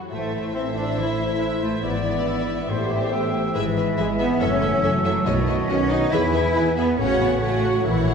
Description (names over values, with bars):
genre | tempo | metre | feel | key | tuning
classical | 139 BPM | 4/4 | rubato | E major from 3.6 s | A4 = 440 Hz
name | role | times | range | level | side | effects
concert harp | arpeggios | 0.0-8.1 s | F#2 to C5 | -28 LUFS | left 3 dB | none
rich studio violin section | melody | 0.1-8.1 s | D#5 to F#5 | -34 LUFS | left 5 dB | none
silver concert flute | second line | 0.1-8.1 s | D5 to G#5 | -34 LUFS | left 3 dB | none
warm oboe | second line | 0.1-8.1 s | A4 to E5 | -31 LUFS | right 1 dB | none
warm symphonic violin section | second line | 0.1-8.1 s | B4 to D5 | -33 LUFS | left 3 dB | none
warm studio viola section | accompaniment | 0.1-8.1 s | E4 to A4 | -29 LUFS | right 1 dB | none
warm French horn section | sustained chords | 0.1-8.1 s | E4 to D5 | -29 LUFS | left 5 dB | none
warm trombone section | sustained chords | 0.1-8.1 s | C#3 to C#4 | -30 LUFS | right 2 dB | none
rich symphonic cello section | bass | 0.1-8.1 s | E3 to E4 | -25 LUFS | right 2 dB | none
rich symphonic double bass section | bass | 0.1-8.1 s | F#1 to E2 | -29 LUFS | right 2 dB | none
timpani | percussion | 5.3-5.9 s | B2 | -29 LUFS | right 4 dB | none
room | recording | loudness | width
wet scoring stage reverb, RT60 1.5 s | heard from further back in the room | -19 LUFS | side -6 dB against mid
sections
0.0-8.1 A section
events
none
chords
0.1 Am; 1.8 E7/G#; 2.7 Am7; 3.6 E/G#; 4.4 F#m7; 5.3 B9; 6.1 E; 7.0 F#m/A